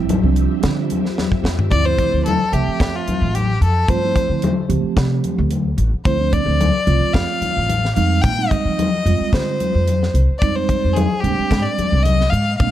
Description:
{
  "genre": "electric jazz fusion",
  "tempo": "110 BPM",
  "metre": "4/4",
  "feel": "swing 53% on 16ths",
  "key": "D minor",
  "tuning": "A4 = 439 Hz",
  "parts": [
    { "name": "mellow tine electric piano", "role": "accompaniment", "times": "0.0-12.7 s", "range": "F3 to E5", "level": "-23 LUFS", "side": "right 10 dB", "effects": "medium stereo tremolo" },
    { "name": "phased string machine", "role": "sustained chords", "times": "0.0-1.7 s", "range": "F3 to E5", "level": "-31 LUFS", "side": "left 1 dB", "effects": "ensemble chorus, phaser" },
    { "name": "upright bass", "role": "bass", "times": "0.0-12.7 s", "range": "A1 to F3", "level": "-18 LUFS", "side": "equal", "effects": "none" },
    { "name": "crisp fusion drum kit", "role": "drums", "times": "0.1-12.7 s", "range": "hi-hat, kick drum, snare drum, toms", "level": "-22 LUFS", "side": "equal", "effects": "none" },
    { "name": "congas", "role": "percussion", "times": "0.1-12.7 s", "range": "none", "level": "-23 LUFS", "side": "left 5 dB", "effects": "none" },
    { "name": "clear violin", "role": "melody", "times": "1.7-12.7 s", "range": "F4 to G5", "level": "-21 LUFS", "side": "left 3 dB", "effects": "none" }
  ],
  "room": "studio ambience",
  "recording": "dark, warm production",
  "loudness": "-15 LUFS",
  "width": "side -12 dB against mid",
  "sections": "0.0-1.7 A section; 1.7-12.7 B section",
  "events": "drum fill 1.2-1.7",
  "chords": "0.0 Dm11; 8.0 Fm9"
}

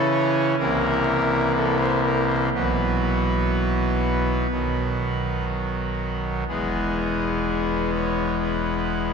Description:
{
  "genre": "classical, chorale-style piece for pipe organ",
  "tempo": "61 BPM",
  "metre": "4/4",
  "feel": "straight",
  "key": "E major",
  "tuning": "A4 = 440 Hz",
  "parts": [
    { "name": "pipe organ, trumpet", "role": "solo", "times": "0.0-9.1 s", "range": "E1 to C#5", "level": "-20 LUFS", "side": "equal", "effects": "none" }
  ],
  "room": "wet cathedral reverb, RT60 4.2 s",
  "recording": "dark, warm production",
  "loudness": "-20 LUFS",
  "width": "side -6 dB against mid",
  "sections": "0.0-9.1 A section",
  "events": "none",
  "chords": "0.0 A/C# (rootless); 0.6 C7; 2.5 Bsus4; 4.5 B; 6.5 E"
}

